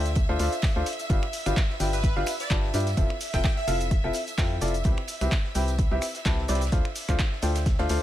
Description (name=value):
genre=piano house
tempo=128 BPM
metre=4/4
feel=swing 56% on 16ths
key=G mixolydian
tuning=A4 = 440 Hz
part: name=bright symphonic violin section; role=sustained chords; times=0.0-8.0 s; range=E5 to E6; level=-36 LUFS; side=equal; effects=sidechain pumping
part: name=clear upright piano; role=riff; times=0.0-8.0 s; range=C4 to A5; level=-30 LUFS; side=left 2 dB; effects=sidechain pumping, ping-pong delay
part: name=organ-like FM bass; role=bass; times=0.0-8.0 s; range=F1 to G2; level=-27 LUFS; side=equal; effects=sidechain pumping
part: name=punchy analog drum machine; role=drums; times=0.1-8.0 s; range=finger snaps, handclaps, hi-hat, shaker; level=-34 LUFS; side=equal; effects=none
part: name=tight funk drum kit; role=drums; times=0.1-8.0 s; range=ride cymbal, snare drum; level=-43 LUFS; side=right 3 dB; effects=high-pass filter on cymbals, high-pass filter on snare, high-pass filter on room
part: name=tambourine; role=percussion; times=0.1-8.0 s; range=none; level=-44 LUFS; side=right 2 dB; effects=none
part: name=electronic kick drum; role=drums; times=0.2-7.8 s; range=none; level=-25 LUFS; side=equal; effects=none
part: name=plucky unison lead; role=melody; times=1.9-4.2 s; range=B4 to G5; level=-34 LUFS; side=right 2 dB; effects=lush chorus, ping-pong delay
room=studio reverb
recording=none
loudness=-23 LUFS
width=side -13 dB against mid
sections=0.0-8.0 A section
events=none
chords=0.0 Dm7; 1.1 G7; 3.0 Fmaj7; 4.8 Cmaj7; 6.7 Dm7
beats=0.16 0.63 | 1.10 1.57 2.04 2.50 | 2.97 3.44 3.91 4.38 | 4.85 5.32 5.79 6.25 | 6.72 7.19 7.66